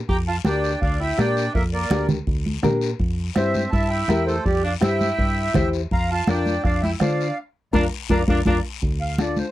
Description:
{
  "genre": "latin, cumbia",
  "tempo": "165 BPM",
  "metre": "4/4",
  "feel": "straight",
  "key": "unclear",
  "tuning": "A4 = 440 Hz",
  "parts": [
    { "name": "accordion", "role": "melody", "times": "0.1-9.5 s", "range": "G4 to Bb5", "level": "-25 LUFS", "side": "right 1 dB", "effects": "light tremolo tuning" },
    { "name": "warm tenor saxophone", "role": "second line", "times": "0.1-8.6 s", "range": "G3 to G4", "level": "-30 LUFS", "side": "right 2 dB", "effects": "none" },
    { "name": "fingered electric bass", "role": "bass", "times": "0.1-9.4 s", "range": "D2 to D3", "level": "-25 LUFS", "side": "equal", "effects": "none" },
    { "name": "bombo", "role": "percussion", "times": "0.1-9.4 s", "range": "none", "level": "-26 LUFS", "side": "right 1 dB", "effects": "none" },
    { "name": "congas", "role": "percussion", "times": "0.1-9.5 s", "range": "none", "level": "-24 LUFS", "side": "right 1 dB", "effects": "none" },
    { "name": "guiro", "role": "percussion", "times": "0.1-9.5 s", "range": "none", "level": "-37 LUFS", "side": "left 13 dB", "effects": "none" },
    { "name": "nylon-string guitar", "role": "accompaniment", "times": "0.5-9.4 s", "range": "D4 to C5", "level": "-24 LUFS", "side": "left 4 dB", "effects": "none" }
  ],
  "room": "light reverb",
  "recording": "dry, close 1970s-style studio recording",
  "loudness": "-19 LUFS",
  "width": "side -15 dB against mid",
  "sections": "0.0-8.8 A section",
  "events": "band accent 7.4-8.8",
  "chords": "0.0 Gm; 3.0 C; 5.9 Bb/F; 8.8 Dm",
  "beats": "| 0.09 0.45 0.82 1.18 | 1.55 1.91 2.27 2.64 | 3.00 3.37 3.73 4.10 | 4.46 4.83 5.19 5.55 | 5.92 6.28 6.64 7.01 | 7.37 7.74 8.10 8.46 | 8.83 9.19"
}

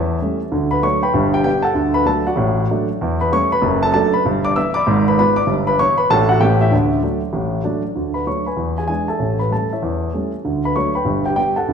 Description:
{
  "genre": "jazz, stride piano",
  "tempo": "194 BPM",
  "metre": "4/4",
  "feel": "swing 63% on 8ths",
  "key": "D major",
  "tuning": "A4 = 440 Hz",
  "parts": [
    { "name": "warm grand piano", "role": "solo", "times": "0.0-11.7 s", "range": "F#1 to E6", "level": "-15 LUFS", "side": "equal", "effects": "none" }
  ],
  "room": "wet recital hall reverb, RT60 1.5 s",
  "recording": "recorded in a church or concert hall",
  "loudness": "-15 LUFS",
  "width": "side -6 dB against mid",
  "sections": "0.0-8.0 A section; 8.0-11.7 A section",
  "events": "none",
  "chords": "0.0 A7; 0.5 D; 1.1 G; 1.8 D; 3.0 A7/E; 3.6 D/F#; 4.2 Em/G; 4.9 G#dim7; 5.5 Em/G; 6.1 D/A; 6.4 A9; 6.7 D; 8.6 E7; 9.2 A7; 10.4 D; 11.1 G",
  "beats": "0.22 | 0.53 0.84 1.15 1.46 | 1.77 2.08 2.39 2.70 | 3.01 3.32 3.63 3.94 | 4.25 4.56 4.87 5.18 | 5.49 5.79 6.11 6.41 | 6.72 7.03 7.34 7.65 | 7.96 8.27 8.58 8.89 | 9.20 9.51 9.82 10.13 | 10.44 10.75 11.06 11.37 | 11.68"
}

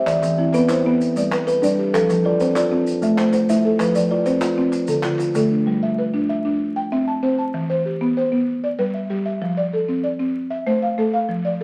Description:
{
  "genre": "southern african traditional, mbira-style interlocking cycle",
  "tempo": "128 BPM (dotted quarters)",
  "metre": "12/8",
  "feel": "straight",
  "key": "G mixolydian",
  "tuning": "A4 = 439 Hz",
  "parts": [
    { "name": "buzzing marimba with soft mallets", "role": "arpeggios", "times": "0.0-11.6 s", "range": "D3 to A5", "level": "-23 LUFS", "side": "equal", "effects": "none" },
    { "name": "kalimba", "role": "arpeggios", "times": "0.0-5.7 s", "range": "D3 to D5", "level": "-22 LUFS", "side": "equal", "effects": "none" },
    { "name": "group handclap", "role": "percussion", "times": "0.1-5.3 s", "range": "none", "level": "-33 LUFS", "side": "equal", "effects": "none" },
    { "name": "maracas", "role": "percussion", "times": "0.1-5.5 s", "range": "none", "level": "-41 LUFS", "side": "equal", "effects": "none" }
  ],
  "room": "moderate large studio reverb, RT60 0.8 s",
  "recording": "vinyl crackle",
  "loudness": "-20 LUFS",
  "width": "mono",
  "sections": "0.0-5.7 A section; 5.7-11.6 B section",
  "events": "none",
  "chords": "0.1 Em; 1.0 G; 1.9 F; 2.9 Am; 3.8 F; 4.7 Dm; 5.7 G; 6.6 C; 7.5 Em; 8.5 G; 9.4 F; 10.4 Am",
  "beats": "| 0.07 0.54 1.00 1.47 | 1.94 2.40 2.87 3.34 | 3.80 4.27 4.74 5.20 | 5.67 6.14 6.61 7.08 | 7.54 8.01 8.48 8.95 | 9.42 9.89 10.36 10.83 | 11.30"
}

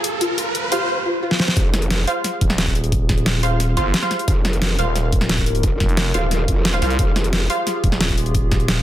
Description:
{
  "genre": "dark technical drum and bass",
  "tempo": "177 BPM",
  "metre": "4/4",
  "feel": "straight",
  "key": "F minor",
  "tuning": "A4 = 437 Hz",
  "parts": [
    { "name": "dark analog pad", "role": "sustained chords", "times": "0.0-8.8 s", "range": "F4 to Bb5", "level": "-30 LUFS", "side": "left 1 dB", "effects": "wide subtle chorus, sidechain pumping" },
    { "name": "dubstep drum kit", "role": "drums", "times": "0.0-8.8 s", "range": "hi-hat, snare drum", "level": "-21 LUFS", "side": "equal", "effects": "overdrive" },
    { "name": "riser", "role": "sound effects", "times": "0.0-0.9 s", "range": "none", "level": "-24 LUFS", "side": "right 2 dB", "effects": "none" },
    { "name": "soft round pluck", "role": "arpeggios", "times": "0.2-1.5 s", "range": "F4 to C5", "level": "-25 LUFS", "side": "left 2 dB", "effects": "ensemble chorus, sidechain pumping, digital delay" },
    { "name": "orchestra-hit-like synth stab", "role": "stabs", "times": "0.7-7.6 s", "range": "F4 to F5", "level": "-23 LUFS", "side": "right 1 dB", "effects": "built-in reverb, digital delay" },
    { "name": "growl bass", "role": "bass", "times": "1.6-2.1, 4.3-7.5 s", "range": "Eb1 to F1", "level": "-20 LUFS", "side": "equal", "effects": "chorus, tube saturation, sidechain pumping" },
    { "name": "electronic kick drum", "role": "drums", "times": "1.6-8.6 s", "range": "none", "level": "-19 LUFS", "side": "equal", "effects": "overdrive" },
    { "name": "growling FM bass", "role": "bass", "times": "2.4-8.8 s", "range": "Eb1 to C2", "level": "-20 LUFS", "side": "equal", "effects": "none" }
  ],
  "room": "light reverb, digital ambience",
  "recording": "dense, heavily limited modern master",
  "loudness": "-16 LUFS",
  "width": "side -13 dB against mid",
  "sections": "0.0-1.6 A section; 1.6-8.8 B section",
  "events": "build-up 0.0-1.6; riser 0.0-0.9; filter sweep on synth pluck 0.0-1.6; drum fill 1.3; drop 1.6-8.8",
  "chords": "0.0 F5; 1.6 Fmadd9",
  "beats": "| 0.21 0.55 0.89 1.23 | 1.57 1.91 2.24 2.58 | 2.92 3.26 3.60 3.94 | 4.28 4.62 4.96 5.29 | 5.63 5.97 6.31 6.65 | 6.99 7.33 7.67 8.01 | 8.35 8.68"
}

